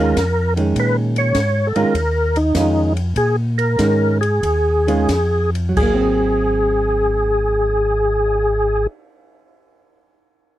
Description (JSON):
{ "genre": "soul jazz organ trio", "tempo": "87-102 BPM", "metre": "4/4", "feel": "swing 68% on 8ths", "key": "Ab mixolydian", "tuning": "A4 = 440 Hz", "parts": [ { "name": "percussive tonewheel organ", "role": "melody", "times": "0.0-8.9 s", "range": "Eb4 to Db5", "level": "-18 LUFS", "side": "equal", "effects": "slow rotary speaker, overdrive, chorus vibrato" }, { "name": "vintage hollow-body jazz guitar", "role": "accompaniment", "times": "0.0-9.1 s", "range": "Eb3 to F4", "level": "-20 LUFS", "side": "right 3 dB", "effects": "none" }, { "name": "mellow tonewheel organ", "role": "bass", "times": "0.0-8.9 s", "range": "Ab1 to Bb2", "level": "-20 LUFS", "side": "equal", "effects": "slow rotary speaker" }, { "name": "open jazz drum kit", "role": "drums", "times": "0.2-8.4 s", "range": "crash cymbal, cymbal swell, hi-hat, kick drum, ride cymbal, snare drum", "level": "-28 LUFS", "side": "equal", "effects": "none" } ], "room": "light reverb", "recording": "dry, close 1970s-style studio recording", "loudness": "-15 LUFS", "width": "side -14 dB against mid", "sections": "0.0-5.8 A section; 5.8-8.5 B section", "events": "slowing down 0.8-5.8", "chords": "0.0 Eb9sus4; 0.8 Bbm7; 1.9 Eb9sus4; 3.2 Bbm7; 4.4 Eb9sus4; 5.8 Ab9" }